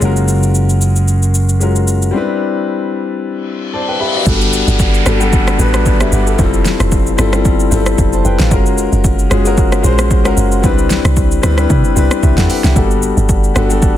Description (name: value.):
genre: amapiano.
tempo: 113 BPM.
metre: 4/4.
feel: swing 55% on 16ths.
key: unclear.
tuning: A4 = 440 Hz.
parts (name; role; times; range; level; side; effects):
clear concert grand piano; accompaniment; 0.0-14.0 s; G3 to B5; -16 LUFS; left 4 dB; none.
sustaining fretless electric bass; bass; 0.0-2.1 s; F#1; -12 LUFS; right 1 dB; lush chorus.
deep house drum kit; drums; 0.0-14.0 s; hi-hat, kick drum, rim click, shaker, snare drum; -15 LUFS; right 1 dB; overdrive.
reverse cymbal and downlifter; sound effects; 3.5-8.5 s; none; -22 LUFS; left 1 dB; none.
deep log drum bass; bass; 4.3-13.9 s; F1 to C3; -14 LUFS; right 1 dB; none.
room: digital ambience.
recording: dense, heavily limited modern master.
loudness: -10 LUFS.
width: side -12 dB against mid.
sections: 0.0-4.3 A section; 4.3-14.0 B section.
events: break 2.1-4.3; grand piano fill 3.5-4.3; reverse cymbal 3.5-4.3; drop 4.3-14.0.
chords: 0.0 F#maj9; 2.1 Cmaj9; 4.3 Gmaj9; 6.4 Fmaj9; 8.5 F#maj9; 10.6 Cmaj9; 12.8 Gmaj9.